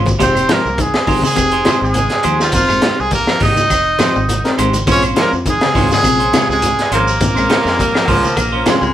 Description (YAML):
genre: afrobeat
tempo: 103 BPM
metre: 4/4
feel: swing 53% on 16ths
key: Bb dorian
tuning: A4 = 440 Hz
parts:
  - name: semi-hollow electric guitar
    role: arpeggios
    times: 0.0-8.9 s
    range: C3 to Ab3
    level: -23 LUFS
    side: left 6 dB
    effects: none
  - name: semi-hollow electric guitar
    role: stabs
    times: 0.0-8.8 s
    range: Ab3 to C5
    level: -19 LUFS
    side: right 2 dB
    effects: none
  - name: fingered electric bass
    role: bass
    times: 0.0-8.9 s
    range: F1 to F2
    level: -22 LUFS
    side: equal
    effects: none
  - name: crunchy breakbeat drum kit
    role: drums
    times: 0.1-8.8 s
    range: hi-hat, kick drum, snare drum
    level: -19 LUFS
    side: equal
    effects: none
  - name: congas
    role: percussion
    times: 0.1-8.8 s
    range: none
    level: -21 LUFS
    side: left 1 dB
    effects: none
  - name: shekere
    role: percussion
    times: 0.1-8.9 s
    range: none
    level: -26 LUFS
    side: right 3 dB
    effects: none
  - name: bright trumpet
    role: melody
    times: 0.2-8.9 s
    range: F4 to Eb5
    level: -17 LUFS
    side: equal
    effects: none
  - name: raspy tenor saxophone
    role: second line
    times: 0.2-8.9 s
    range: F3 to Eb4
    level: -23 LUFS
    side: right 2 dB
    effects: none
  - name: overdriven reed electric piano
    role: accompaniment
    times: 0.2-8.9 s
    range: Ab3 to Bb4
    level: -22 LUFS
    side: left 3 dB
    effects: fast tremolo
  - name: claves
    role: percussion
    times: 0.4-8.8 s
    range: none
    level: -29 LUFS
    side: left 7 dB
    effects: none
  - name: raspy baritone saxophone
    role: second line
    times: 7.5-8.9 s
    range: F3 to Bb3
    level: -20 LUFS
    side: left 2 dB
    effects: none
room: wet studio reverb, RT60 0.5 s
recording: band playing live in one room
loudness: -11 LUFS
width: side -11 dB against mid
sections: 0.0-8.9 A section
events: drum fill 0.0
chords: 0.2 Fm9; 4.9 Bbm9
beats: | 0.20 0.79 1.37 1.96 | 2.54 3.12 3.71 4.29 | 4.87 5.46 6.04 6.62 | 7.21 7.79 8.37